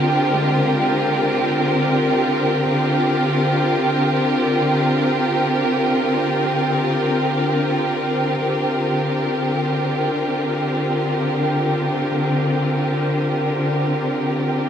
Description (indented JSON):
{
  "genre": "ambient",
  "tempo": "free time",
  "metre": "none",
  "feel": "none",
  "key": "Bb mixolydian",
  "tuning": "A4 = 439 Hz",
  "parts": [
    { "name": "warm symphonic string section", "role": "sustained chords", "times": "0.0-14.7 s", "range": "D3 to Bb4", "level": "-17 LUFS", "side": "equal", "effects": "none" },
    { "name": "felt-muted upright piano", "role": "arpeggios", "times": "0.0-2.3 s", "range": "Ab3 to Bb3", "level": "-36 LUFS", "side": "left 3 dB", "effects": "none" }
  ],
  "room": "wet cathedral reverb, RT60 5.7 s",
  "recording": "none",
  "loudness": "-17 LUFS",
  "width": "side -8 dB against mid",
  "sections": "0.0-1.4 A section; 1.4-14.7 B section",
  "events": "none",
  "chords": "0.0 Abadd9; 1.4 Bb7; 8.4 Gm"
}